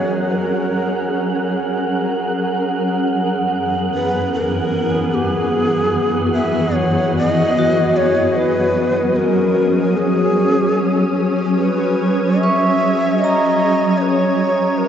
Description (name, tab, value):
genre	ambient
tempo	free time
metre	none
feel	none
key	F# mixolydian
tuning	A4 = 440 Hz
part	breathy reedy long shakuhachi	melody	0.0-14.9 s	G#4 to E5	-20 LUFS	equal	diffuse ambient delay
part	shimmering ambient pad	sustained chords	0.0-14.9 s	F#2 to C#5	-17 LUFS	equal	chorus, built-in reverb
part	bowed-like drone	drone	0.0-7.6 s	none	barely audible	none	none
part	wind-like tuned noise texture	texture	0.0-14.9 s	F#5 to D#6	-27 LUFS	right 2 dB	built-in reverb
part	vibraphone with medium hard mallets	arpeggios	7.6-14.9 s	F#4 to C#6	-22 LUFS	left 1 dB	diffuse ambient delay
room	wet huge ambient reverb, RT60 6.9 s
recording	in a vast, echoing space, nothing above 7.7 kHz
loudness	-15 LUFS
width	side -9 dB against mid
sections	0.0-7.6 A section; 7.6-14.9 B section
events	fade-in on synth texture 7.6-14.9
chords	0.0 F#; 2.8 E/F#; 7.6 F#sus4